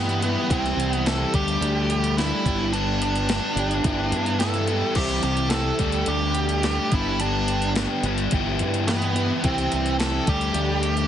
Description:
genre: indie rock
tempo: 107 BPM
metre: 4/4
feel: straight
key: unclear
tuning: A4 = 440 Hz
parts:
  - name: nasal lead guitar with a parked wah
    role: melody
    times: 0.0-11.1 s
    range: B3 to A4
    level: -26 LUFS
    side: right 2 dB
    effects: overdrive, plate reverb
  - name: crunchy overdriven guitar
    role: riff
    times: 0.0-11.1 s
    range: E3 to G4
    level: -27 LUFS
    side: left 11 dB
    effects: none
  - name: overdriven electric guitar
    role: riff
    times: 0.0-11.1 s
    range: E3 to G4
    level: -28 LUFS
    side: right 8 dB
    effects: analog chorus
  - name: growling fingered electric bass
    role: bass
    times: 0.0-11.1 s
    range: G1 to G2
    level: -26 LUFS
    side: equal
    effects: overdrive
  - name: crisp 8-bit digital drum machine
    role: drums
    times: 0.1-11.1 s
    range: crash cymbal, hi-hat, kick drum, snare drum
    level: -27 LUFS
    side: equal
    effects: none
room: light reverb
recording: heavily compressed radio sound, nothing above 11.0 kHz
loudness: -20 LUFS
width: side -10 dB against mid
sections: 0.0-11.1 A section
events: none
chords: 0.5 C; 1.3 Dsus4; 2.5 G; 3.8 Em7/G; 5.0 C; 5.8 Dsus4; 6.9 G; 8.3 Em/G; 9.4 C; 10.3 Dsus4

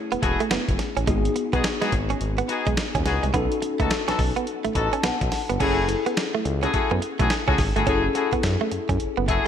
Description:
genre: R&B, new jack swing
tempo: 106 BPM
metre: 4/4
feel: swing 62% on 16ths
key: F# dorian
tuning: A4 = 439 Hz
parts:
  - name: bell-like tine electric piano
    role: accompaniment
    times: 0.0-9.5 s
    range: A3 to A5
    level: -28 LUFS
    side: left 5 dB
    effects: ensemble chorus
  - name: direct-recorded clean electric guitar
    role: riff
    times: 0.1-9.3 s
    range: G#3 to C#4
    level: -28 LUFS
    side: right 7 dB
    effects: tube saturation, analog chorus
  - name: smooth synth bass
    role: bass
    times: 0.1-9.4 s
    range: E1 to F#2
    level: -26 LUFS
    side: equal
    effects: none
  - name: dusty soul sampler-style drum kit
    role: drums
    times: 0.1-9.4 s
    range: crash cymbal, hi-hat, kick drum, snare drum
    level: -26 LUFS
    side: equal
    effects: gated reverb
  - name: warm horn section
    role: stabs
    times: 0.2-9.5 s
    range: A3 to A4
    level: -27 LUFS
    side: left 3 dB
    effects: digital delay
room: light reverb, digital ambience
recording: bright 1980s-style digital production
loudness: -21 LUFS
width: side -8 dB against mid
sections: 0.0-5.6 A section; 5.6-9.5 B section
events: tine electric piano fill 4.5-5.6, 9.0-9.5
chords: 0.0 F#m9; 1.1 G#m7; 3.3 B7; 5.6 F#m9

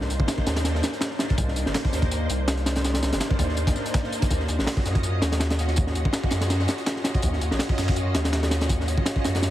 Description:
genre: drum and bass, jungle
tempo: 164 BPM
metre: 4/4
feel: swing 54% on 16ths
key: unclear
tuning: A4 = 439 Hz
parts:
  - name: soft string machine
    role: sustained chords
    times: 0.0-9.5 s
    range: Bb3 to Eb5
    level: -30 LUFS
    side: equal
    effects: ensemble chorus
  - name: saturated sub bass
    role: bass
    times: 0.0-9.5 s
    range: G1 to Gb2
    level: -26 LUFS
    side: equal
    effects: none
  - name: crunchy breakbeat drum kit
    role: drums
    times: 0.0-9.5 s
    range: hi-hat, kick drum, snare drum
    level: -24 LUFS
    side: equal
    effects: none
  - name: dusty soul sampler-style drum kit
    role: drums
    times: 0.1-9.5 s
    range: hi-hat, snare drum, tambourine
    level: -36 LUFS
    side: equal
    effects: high-pass filter on perc, high-pass filter on snare, high-pass filter on hats
room: light reverb, small room ambience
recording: heavily compressed radio sound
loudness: -22 LUFS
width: side -13 dB against mid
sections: 0.0-9.5 A section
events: none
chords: 0.0 Cm9; 4.3 Ebm9

